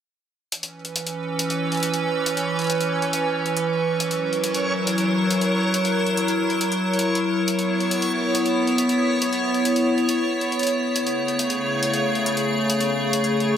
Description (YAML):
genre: IDM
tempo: 138 BPM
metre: 4/4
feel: straight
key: C# minor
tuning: A4 = 441 Hz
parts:
  - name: icy glass pad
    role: sustained chords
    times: 0.8-13.6 s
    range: C#3 to C#5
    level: -21 LUFS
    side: equal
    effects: chorus, built-in reverb
  - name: electronic hi-hat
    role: drums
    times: 0.5-13.5 s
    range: none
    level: -28 LUFS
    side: left 1 dB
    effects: small room ambience
  - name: backwards swelling texture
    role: texture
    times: 1.6-13.6 s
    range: C#5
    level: -29 LUFS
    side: equal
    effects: built-in reverb
room: moderate digital room reverb, RT60 1.2 s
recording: none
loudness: -20 LUFS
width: side -9 dB against mid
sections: 0.5-13.6 A section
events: none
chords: 0.5 C#m7; 4.0 F#7; 7.5 C#m7; 11.0 Amaj7/C#